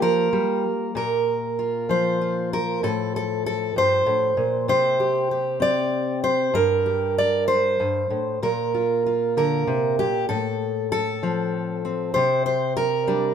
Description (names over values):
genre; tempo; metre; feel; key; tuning
folk, solo fingerstyle acoustic guitar; 64 BPM (dotted quarters); 6/8; straight; Bb major; A4 = 440 Hz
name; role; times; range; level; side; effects
fingerpicked steel-string acoustic guitar; solo; 0.0-13.3 s; G2 to D5; -20 LUFS; equal; none
room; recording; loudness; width
moderate stone room reverb, RT60 1.1 s; band playing live in one room; -20 LUFS; side -8 dB against mid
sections
0.9-13.3 A section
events
none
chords
0.0 Fsus4; 0.9 Bb5; 2.8 F/A; 4.7 Csus2; 6.5 Gmadd9; 8.4 Bb; 10.3 F/A; 12.1 Csus2